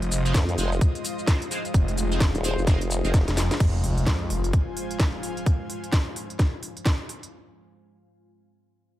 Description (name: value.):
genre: bass house.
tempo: 129 BPM.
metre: 4/4.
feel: swing 60% on 16ths.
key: F minor.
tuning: A4 = 441 Hz.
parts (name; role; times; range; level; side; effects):
deep dark ambient pad; sustained chords; 0.0-7.3 s; Ab3 to C5; -34 LUFS; left 3 dB; chorus, built-in reverb, sidechain pumping.
phased detuned saw bass; bass; 0.0-4.5 s; F1 to F2; -26 LUFS; equal; phaser, overdrive, sidechain pumping.
garage drum kit; drums; 0.0-7.3 s; crash cymbal, hi-hat, shaker, snare drum; -30 LUFS; equal; none.
airy breathy pad; texture; 0.0-7.3 s; F4 to Ab5; -37 LUFS; equal; chorus, sidechain pumping.
band-passed chord stab; stabs; 0.3-3.1 s; Ab3 to Eb5; -36 LUFS; right 2 dB; phaser, ensemble chorus, sidechain pumping, dub echo.
formant-sweep wobble bass; bass; 0.3-3.3 s; Eb1 to F2; -25 LUFS; equal; chorus, tube saturation, sidechain pumping.
electronic kick drum; drums; 0.3-7.0 s; none; -22 LUFS; equal; none.
breathy silver concert flute; melody; 2.4-2.6 s; C5; -40 LUFS; equal; none.
sub drop; sound effects; 3.6-5.5 s; none; -33 LUFS; equal; none.
room: little or no reverb.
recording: none.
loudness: -22 LUFS.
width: side -14 dB against mid.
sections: 0.0-3.6 A section; 3.6-7.3 B section.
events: drop 0.0-3.6; drum fill 3.1-3.6; fade-out on analog synth pad 3.6-7.3; impact 3.6-5.5; filter sweep on ambient pad 3.6-7.3.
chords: 0.0 Fm.